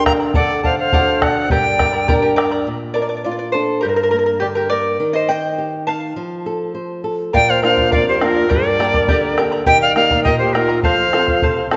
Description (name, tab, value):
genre	andean folk, Andean ensemble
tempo	103 BPM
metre	2/4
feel	straight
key	G minor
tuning	A4 = 441 Hz
part	bright reedy quena	melody	0.0-2.3, 7.3-11.7 s	Bb4 to Bb5	-19 LUFS	equal	none
part	mellow large quena	second line	0.0-2.4, 7.4-11.7 s	F4 to F5	-24 LUFS	equal	none
part	charango	accompaniment	0.0-11.8 s	G4 to Bb5	-22 LUFS	equal	none
part	flamenco guitar	accompaniment	0.0-11.8 s	F2 to C5	-24 LUFS	equal	none
part	bombo	percussion	0.1-2.5, 7.3-11.8 s	none	-23 LUFS	equal	none
room	wet scoring stage reverb, RT60 1.8 s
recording	nothing above 7.8 kHz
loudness	-17 LUFS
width	mono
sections	0.0-2.7 A section; 2.7-7.3 B section; 7.3-11.8 C section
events	charango solo 2.7-7.3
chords	0.3 D; 1.5 Gm; 2.7 Bb; 3.8 Gm; 5.0 Eb; 6.2 F; 7.3 Bb; 8.5 Gm; 9.7 Eb; 10.8 F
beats	| 0.35 0.93 | 1.51 2.09 | 2.67 3.25 | 3.83 4.42 | 5.00 5.59 | 6.17 6.75 | 7.34 7.92 | 8.50 9.09 | 9.67 10.25 | 10.84 11.42